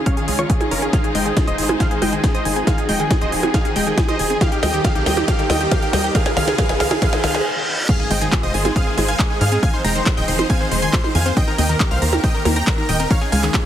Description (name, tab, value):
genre	uplifting trance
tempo	138 BPM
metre	4/4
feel	straight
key	unclear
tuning	A4 = 440 Hz
part	supersaw chords	melody	0.0-13.6 s	Db4 to C6	-22 LUFS	right 1 dB	sidechain pumping, low-pass filter, digital delay
part	analog pluck	second line	0.0-13.6 s	G5 to C7	-30 LUFS	left 1 dB	chorus, sidechain pumping, digital delay
part	clear studio string section	sustained chords	0.0-13.7 s	Db3 to C5	-27 LUFS	equal	sidechain pumping
part	riser, reverse cymbal and impact	sound effects	0.2-9.6 s	none	-29 LUFS	equal	none
part	wide unison pluck	arpeggios	0.1-13.6 s	Eb3 to G4	-26 LUFS	left 2 dB	sidechain pumping, digital delay
part	electronic kick drum	drums	0.1-13.6 s	none	-18 LUFS	equal	none
part	techno drum kit	drums	0.1-13.6 s	crash cymbal, handclaps, hi-hat, percussion blips, snare drum	-23 LUFS	right 2 dB	sidechain pumping on hats, sidechain pumping on perc, sidechain pumping on cymbals
part	tight sequencer bass	bass	0.3-13.5 s	Eb1 to Ab2	-23 LUFS	equal	sidechain pumping
room	light reverb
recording	heavily compressed radio sound, multiband compression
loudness	-16 LUFS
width	side -10 dB against mid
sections	0.0-7.9 A section; 7.9-13.7 B section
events	build-up 0.0-7.9; filter sweep on supersaw synth 0.0-7.9; filter sweep on synth arpeggio sound 0.0-7.9; filter sweep on synth pluck 0.0-7.9; drum fill 0.9-7.5; reverse cymbal 7.0-7.9; stop 7.5-7.9; drop 7.9-13.7; impact 7.9-9.6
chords	0.0 Dbadd9; 0.9 Ab6; 2.7 Fm7; 4.4 Eb6; 6.1 Dbadd9; 7.9 Ab6; 9.6 Fm7; 11.4 Eb6; 13.1 Dbadd9